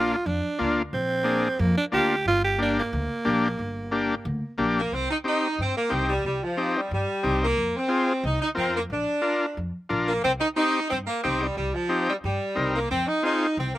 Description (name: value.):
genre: latin.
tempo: 180 BPM.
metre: 4/4.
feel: straight.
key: C minor.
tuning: A4 = 440 Hz.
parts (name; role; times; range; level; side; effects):
raspy tenor saxophone; second line; 0.0-4.6 s; Bb3 to G4; -26 LUFS; right 2 dB; slapback echo.
combo organ; accompaniment; 0.0-13.5 s; Bb3 to Bb4; -25 LUFS; left 2 dB; none.
upright bass; bass; 0.0-13.7 s; G1 to G2; -30 LUFS; equal; none.
warm saxophone section; melody; 4.8-13.8 s; F3 to Eb4; -25 LUFS; equal; none.
room: light reverb.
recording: recorded outdoors, with no room sound.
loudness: -22 LUFS.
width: side -15 dB against mid.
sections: 0.0-4.9 A section; 4.9-13.8 B section.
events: tenor saxophone solo 0.0-4.9.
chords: 0.0 Bb; 2.3 Gm; 4.9 Cm; 7.6 Fm; 8.9 Bb; 10.2 Cm; 12.9 Fm.